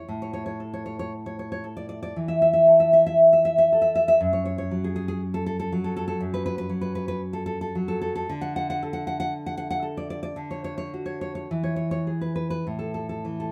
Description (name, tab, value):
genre	romantic piece for solo classical guitar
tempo	57 BPM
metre	4/4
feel	uneven beats, rubato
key	A major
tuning	A4 = 440 Hz
part	nylon-string guitar	solo	0.0-13.5 s	F#2 to F#5	-24 LUFS	equal	none
room	light reverb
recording	none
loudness	-24 LUFS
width	mono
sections	0.1-13.5 A section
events	none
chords	0.1 A5; 4.2 N.C.; 8.3 D5; 10.4 Dmaj7; 11.5 E; 12.7 A5